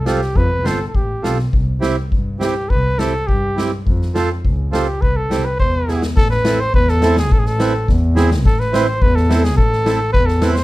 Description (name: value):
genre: klezmer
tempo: 104 BPM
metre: 2/4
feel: straight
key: C major, A harmonic minor from 6.2 s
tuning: A4 = 440 Hz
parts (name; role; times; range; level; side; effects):
- warm cornet; melody; 0.0-10.6 s; G4 to C5; -20 LUFS; equal; none
- dark double bass; bass; 0.0-10.6 s; G1 to G2; -18 LUFS; equal; none
- accordion; accompaniment; 0.1-10.6 s; B3 to C5; -20 LUFS; right 4 dB; none
- street-band drum kit; drums; 0.1-10.6 s; kick drum, snare drum; -19 LUFS; left 1 dB; none
room: little or no reverb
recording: dark, warm production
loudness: -14 LUFS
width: side -18 dB against mid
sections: 0.0-6.2 A section; 6.2-10.6 B section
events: speeding up 0.0-10.6; drum fill 5.9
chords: 0.0 F; 1.5 C; 3.9 F; 5.0 C; 5.6 E; 6.2 Am